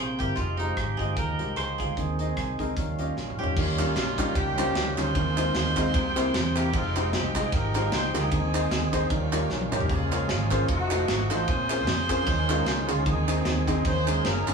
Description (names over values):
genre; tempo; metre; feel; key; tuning
uptempo gospel; 152 BPM; 4/4; swing 56% on 8ths; unclear; A4 = 439 Hz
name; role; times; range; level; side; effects
koto; melody; 0.0-5.4 s; Eb4 to C5; -34 LUFS; right 1 dB; none
warm horn section; melody; 0.0-14.5 s; Ab3 to C5; -31 LUFS; equal; none
clear grand piano; accompaniment; 0.0-14.5 s; Bb2 to F5; -30 LUFS; left 2 dB; none
percussive tonewheel organ; sustained chords; 0.0-14.5 s; C3 to G5; -32 LUFS; right 2 dB; fast rotary speaker, overdrive
fingered electric bass; bass; 0.0-14.5 s; F1 to F2; -30 LUFS; right 1 dB; none
modern studio drum kit; drums; 0.2-14.5 s; crash cymbal, hi-hat, kick drum, ride cymbal, rim click, snare drum, splash cymbal, toms; -30 LUFS; equal; none
group handclap; percussion; 3.8-14.5 s; none; -35 LUFS; right 4 dB; none
room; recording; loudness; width
wet studio reverb, RT60 0.6 s; band playing live in one room, small room ambience; -23 LUFS; side -5 dB against mid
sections
0.0-3.6 A section; 3.6-14.5 B section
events
drum fill 3.2-3.6, 9.5-9.9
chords
0.4 Fm9; 2.0 Ab/Eb; 2.8 Eb9; 5.1 Ab6/Eb; 5.9 C7; 6.7 Fm9; 8.3 Ab/Eb; 9.1 Eb9; 9.9 Db6; 10.7 F7b9; 11.5 Bbm9; 12.3 Eb9sus4; 13.1 Ab/Eb; 13.9 Eb7sus4